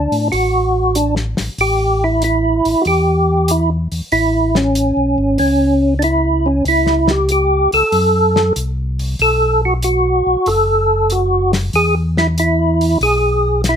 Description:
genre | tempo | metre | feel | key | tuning
soul jazz organ trio | 94 BPM | 4/4 | swing 68% on 8ths | A mixolydian | A4 = 438 Hz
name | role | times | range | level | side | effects
percussive tonewheel organ | melody | 0.0-13.8 s | C#4 to A4 | -14 LUFS | right 1 dB | slow rotary speaker, chorus vibrato
mellow tonewheel organ | bass | 0.0-13.8 s | F#1 to A2 | -18 LUFS | left 1 dB | chorus vibrato, slow rotary speaker
warm soul drum kit | drums | 0.1-13.8 s | hi-hat, snare drum | -24 LUFS | left 2 dB | none
room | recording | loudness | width
light reverb | none | -13 LUFS | side -8 dB against mid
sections
0.0-13.8 A section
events
none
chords
0.0 D; 1.6 A7; 6.7 C#dim; 7.9 F#dim; 9.2 B5; 11.7 E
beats
0.32 0.95 | 1.59 2.22 2.85 3.49 | 4.12 4.75 5.39 6.02 | 6.66 7.29 7.93 8.56 | 9.20 9.84 10.47 11.11 | 11.74 12.38 13.02 13.65

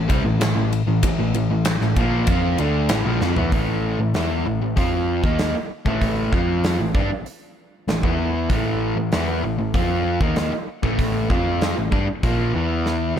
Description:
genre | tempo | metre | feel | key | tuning
hard rock | 96 BPM | 4/4 | straight | A minor | A4 = 440 Hz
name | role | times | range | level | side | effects
overdriven semi-hollow guitar | riff | 0.0-13.2 s | A2 to F4 | -25 LUFS | right 9 dB | none
sludgy distorted guitar | riff | 0.0-13.2 s | A2 to F4 | -24 LUFS | left 10 dB | overdrive
hollow-body short-scale picked electric bass | bass | 0.0-13.2 s | A1 to G2 | -24 LUFS | equal | none
gated 80s drum kit | drums | 0.1-13.0 s | hi-hat, kick drum, ride cymbal, snare drum, toms | -23 LUFS | equal | none
room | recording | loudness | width
studio ambience | none | -18 LUFS | side -9 dB against mid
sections
0.0-3.5 A section; 3.5-13.2 B section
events
drum fill 3.2-3.5, 12.9-13.2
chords
0.0 Am; 12.5 E5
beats
0.41 | 1.03 1.66 2.28 2.90 | 3.53 4.15 4.77 5.39 | 6.02 6.64 7.26 7.88 | 8.51 9.13 9.75 10.37 | 10.99 11.62 12.24 12.86

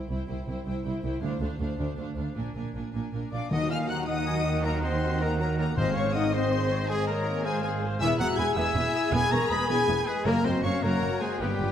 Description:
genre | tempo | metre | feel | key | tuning
cinematic, heroic adventure film score | 106 BPM (dotted quarters) | 6/8 | straight | unclear | A4 = 440 Hz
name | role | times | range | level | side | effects
warm symphonic violin section | melody | 0.0-11.7 s | F5 to B6 | -37 LUFS | left 5 dB | none
warm symphonic violin section | second line | 0.0-11.7 s | G4 to B5 | -37 LUFS | left 4 dB | none
clear symphonic viola section | accompaniment | 0.0-11.7 s | Gb3 to C5 | -34 LUFS | equal | none
rich symphonic double bass section | bass | 0.1-11.7 s | E1 to Eb2 | -32 LUFS | right 2 dB | none
warm symphonic cello section | bass | 0.1-11.7 s | C2 to Eb3 | -32 LUFS | right 2 dB | none
silver concert flute | second line | 3.3-11.7 s | B4 to Eb6 | -36 LUFS | left 2 dB | none
mellow French horn section | sustained chords | 3.3-11.7 s | G3 to B4 | -31 LUFS | left 4 dB | none
clear trumpet | stabs | 3.3-11.7 s | G4 to B5 | -33 LUFS | right 1 dB | none
timpani | percussion | 3.5-6.3 s | Ab2 to Eb3 | -32 LUFS | left 2 dB | none
warm oboe | second line | 4.1-11.7 s | B4 to G#5 | -36 LUFS | left 2 dB | none
room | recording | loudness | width
wet concert hall reverb, RT60 1.8 s | none | -25 LUFS | side -9 dB against mid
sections
0.0-3.5 A section; 3.5-11.7 B section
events
none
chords
0.0 C; 1.2 Dm7; 2.4 Bb7; 3.5 Ebm; 5.8 Ab; 8.0 E; 10.3 Gb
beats
| 0.10 0.66 | 1.22 1.79 | 2.36 2.93 | 3.51 4.08 | 4.64 5.21 | 5.77 6.33 | 6.89 7.45 | 8.01 8.57 | 9.13 9.70 | 10.26 10.83 | 11.41

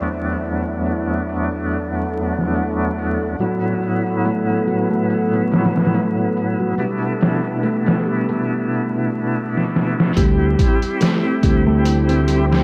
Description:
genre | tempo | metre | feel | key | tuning
trip hop | 71 BPM | 4/4 | swing 56% on 16ths | A dorian | A4 = 439 Hz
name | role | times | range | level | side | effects
bright tonewheel organ | accompaniment | 0.0-12.6 s | E2 to G4 | -24 LUFS | equal | slow rotary speaker, tremolo, tape echo
deep dark ambient pad | sustained chords | 0.0-12.6 s | B3 to G5 | -29 LUFS | equal | chorus, built-in reverb
trip hop sampler-style drum kit | drums | 0.0-12.6 s | hi-hat, kick drum, snare drum | -21 LUFS | equal | low-pass filter on hats, low-pass filter on snare, low-pass filter on kick, low-pass filter on room
felt-muted upright piano | arpeggios | 3.4-12.6 s | F#3 to C4 | -24 LUFS | equal | tape echo
modern bright fingered electric bass | bass | 10.2-12.6 s | D2 | -19 LUFS | equal | none
room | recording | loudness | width
light reverb | dark, warm production, vinyl crackle | -19 LUFS | mono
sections
0.0-10.2 A section; 10.2-12.6 B section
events
drum fill 9.5-10.2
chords
0.0 E9sus4; 3.4 Asus2; 6.8 G69/B; 10.2 D9sus4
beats
| 0.03 0.87 1.72 2.56 | 3.40 4.25 5.09 5.94 | 6.79 7.63 8.48 9.32 | 10.17 11.01 11.86

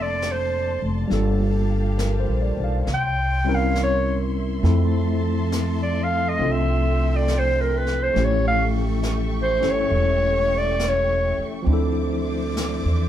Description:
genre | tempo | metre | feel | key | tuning
jazz ballad | 68 BPM | 4/4 | swing 68% on 8ths | unclear | A4 = 440 Hz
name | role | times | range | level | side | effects
clear clarinet | melody | 0.0-11.4 s | Bb4 to G5 | -22 LUFS | equal | none
barky tine electric piano | accompaniment | 0.0-13.1 s | F3 to F5 | -25 LUFS | left 1 dB | medium stereo tremolo
dark symphonic string section | sustained chords | 0.0-13.1 s | G4 to D6 | -34 LUFS | equal | none
upright bass | bass | 0.0-13.1 s | E1 to F2 | -23 LUFS | equal | none
jazz brush drum kit | drums | 0.2-13.1 s | brushed snare drum, hi-hat, snare drum | -35 LUFS | equal | none
room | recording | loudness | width
moderate club reverb, RT60 0.7 s | heard from further back in the room | -19 LUFS | side -11 dB against mid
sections
0.0-13.1 A section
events
clarinet solo 0.0-13.1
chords
0.0 Bbmaj9; 1.1 Gm9; 2.9 C7b9; 4.6 Fmaj7; 8.2 A7b13; 11.7 Dm9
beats
0.23 | 1.11 1.99 2.87 3.75 | 4.64 5.52 6.40 7.28 | 8.16 9.04 9.92 10.80 | 11.69 12.57

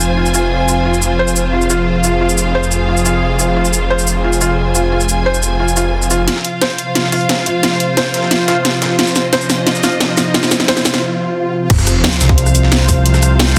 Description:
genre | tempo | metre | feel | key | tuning
dark technical drum and bass | 177 BPM | 4/4 | straight | F minor | A4 = 439 Hz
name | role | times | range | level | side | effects
sweeping resonant pad | sustained chords | 0.0-13.6 s | C3 to C5 | -22 LUFS | equal | chorus, sidechain pumping
snarling distorted saw bass | bass | 0.0-6.3, 11.7-13.6 s | F1 | -19 LUFS | equal | distortion, sidechain pumping
drum and bass drum kit | drums | 0.0-13.6 s | cabasa, crash cymbal, hi-hat, rim click, snare drum | -18 LUFS | equal | overdrive, studio reverb
warm studio string section | texture | 0.0-13.6 s | F4 to Ab5 | -22 LUFS | equal | sidechain pumping
felt-muted upright piano | arpeggios | 0.2-10.8 s | F4 to C5 | -22 LUFS | equal | sidechain pumping, low-pass filter, tape echo
breakbeat sampler-style drum kit | drums | 6.3-13.6 s | hi-hat, snare drum | -26 LUFS | equal | none
riser, swell and sub drop | sound effects | 8.2-13.1 s | none | -25 LUFS | equal | none
electronic kick drum | drums | 11.7-13.0 s | none | -15 LUFS | equal | overdrive, studio reverb
growling FM bass | bass | 12.2-13.6 s | C2 | -14 LUFS | equal | none
room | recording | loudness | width
light reverb | dense, heavily limited modern master | -14 LUFS | mono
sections
0.0-6.3 A section; 6.3-11.7 B section; 11.7-13.6 C section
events
build-up 6.3-11.7; drum fill 6.3-11.0; break 11.0-11.7; swell 11.0-11.7; drop 11.7-13.6; impact 11.7-13.1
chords
0.0 F5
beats
0.17 0.51 | 0.85 1.19 1.53 1.87 | 2.21 2.55 2.89 3.23 | 3.56 3.90 4.24 4.58 | 4.92 5.26 5.60 5.94 | 6.28 6.62 6.95 7.29 | 7.63 7.97 8.31 8.65 | 8.99 9.33 9.67 10.01 | 10.34 10.68 11.02 11.36 | 11.70 12.04 12.38 12.72 | 13.06 13.39

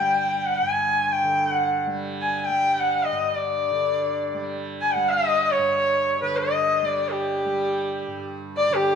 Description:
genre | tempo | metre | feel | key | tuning
indian classical, Hindustani | free time | none | none | unclear | A4 = 440 Hz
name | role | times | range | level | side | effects
clear sarangi | melody | 0.0-9.0 s | G4 to Ab5 | -21 LUFS | left 1 dB | none
tanpura | drone | 0.0-9.0 s | G2 to G3 | -32 LUFS | right 4 dB | none
room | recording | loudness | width
moderate concert hall reverb, RT60 2.3 s | minimal, uncompressed stereo recording | -21 LUFS | side -7 dB against mid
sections
0.0-9.0 A section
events
none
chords
none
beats
free time

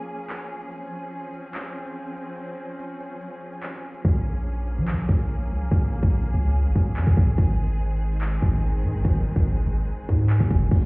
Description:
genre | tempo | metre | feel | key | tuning
hip hop, drill | 144 BPM | 4/4 | half-time | unclear | A4 = 443 Hz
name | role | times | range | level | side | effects
clear studio string section | sustained chords | 0.0-10.9 s | Eb3 to Ab4 | -33 LUFS | equal | none
drill drum kit | drums | 0.2-10.8 s | crash cymbal, handclaps, hi-hat, kick drum | -21 LUFS | equal | none
long sustained 808-style bass | bass | 4.0-10.9 s | Gb1 to F3 | -22 LUFS | equal | none
room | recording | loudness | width
little or no reverb | heard muffled through a wall, stone room reverb, vinyl crackle, EQ, nothing above 10.8 kHz | -20 LUFS | side -30 dB against mid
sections
0.0-10.7 A section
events
break 0.0-4.0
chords
0.0 Bbm7; 0.7 Dbmaj7; 4.0 Bbm7; 7.4 Ab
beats
0.30 | 0.71 1.13 1.55 1.97 | 2.38 2.80 3.21 3.63 | 4.05 4.46 4.88 5.30 | 5.71 6.13 6.55 6.96 | 7.38 7.80 8.21 8.63 | 9.05 9.46 9.88 10.30 | 10.71

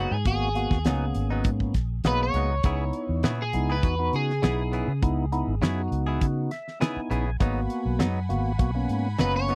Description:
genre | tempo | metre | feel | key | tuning
straight-eighth soul blues | 101 BPM | 4/4 | straight | G# minor | A4 = 440 Hz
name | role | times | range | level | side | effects
electric guitar at the edge of break-up | melody | 0.0-9.6 s | F#4 to C#5 | -32 LUFS | equal | analog chorus
percussive tonewheel organ | accompaniment | 0.0-9.6 s | A#3 to G#5 | -32 LUFS | equal | slow rotary speaker
direct-recorded clean electric guitar | stabs | 0.0-9.6 s | G#2 to G#4 | -34 LUFS | equal | none
vintage muted fingered electric bass | bass | 0.0-9.6 s | F#1 to C#3 | -29 LUFS | equal | none
damped 70s drum kit | drums | 0.3-9.6 s | hi-hat, kick drum, snare drum | -28 LUFS | equal | none
warm chamber string section | sustained chords | 7.4-9.6 s | F#5 to B5 | -42 LUFS | equal | none
room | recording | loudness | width
light reverb | dry, close 1970s-style studio recording | -26 LUFS | mono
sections
0.0-9.6 A section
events
clean electric guitar solo 0.0-9.6; tonewheel organ fill 6.2-7.4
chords
0.0 G#m7; 2.6 C#m7; 7.4 G#m7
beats
| 0.27 0.86 1.46 2.06 | 2.65 3.25 3.84 4.44 | 5.03 5.63 6.22 6.82 | 7.41 8.00 8.60 9.19

